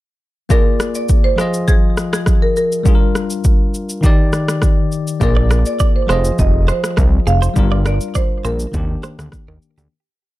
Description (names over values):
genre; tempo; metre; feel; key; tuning
afrobeats; 102 BPM; 4/4; straight; Eb major; A4 = 440 Hz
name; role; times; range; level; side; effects
marimba with medium mallets; melody; 0.5-9.6 s; Ab4 to F5; -21 LUFS; right 2 dB; tape echo
bell-like tine electric piano; accompaniment; 0.5-9.9 s; Eb3 to Eb5; -21 LUFS; moving between left 9 dB and left 2 dB; auto-pan
deep house drum kit; drums; 0.5-9.9 s; kick drum, rim click, shaker; -15 LUFS; equal; none
fat analog bass; bass; 5.2-9.9 s; F1 to Eb2; -16 LUFS; equal; none
direct-recorded clean electric guitar; riff; 5.4-9.9 s; G4 to D5; -26 LUFS; right 8 dB; tape echo
room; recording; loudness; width
little or no reverb; dark, warm production; -13 LUFS; side -17 dB against mid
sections
0.5-9.9 verse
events
fade-out 7.6-9.9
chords
0.5 Bb7; 1.4 Fm7; 2.9 Gm7; 4.0 Ebmaj7; 5.2 Bb7; 6.1 Fm7; 7.6 Gm7; 8.7 Ebmaj7